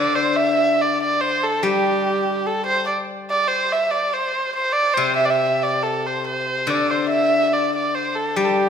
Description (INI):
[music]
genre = chinese traditional, Chinese chamber ensemble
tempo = 71 BPM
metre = 2/4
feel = rubato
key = G zhi mode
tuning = A4 = 440 Hz
[part]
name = warm erhu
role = melody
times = 0.0-8.7 s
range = G4 to E5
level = -19 LUFS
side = right 2 dB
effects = none
[part]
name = steel-string zither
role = accompaniment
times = 0.0-8.7 s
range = C3 to G3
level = -23 LUFS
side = left 6 dB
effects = none
[sound]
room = wet recital hall reverb, RT60 1.7 s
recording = none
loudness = -18 LUFS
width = side -7 dB against mid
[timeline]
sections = 0.0-8.7 A section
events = none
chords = none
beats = 0.80 | 1.65 2.48 | 3.31 4.15 | 4.99 5.83 | 6.69 7.54 | 8.39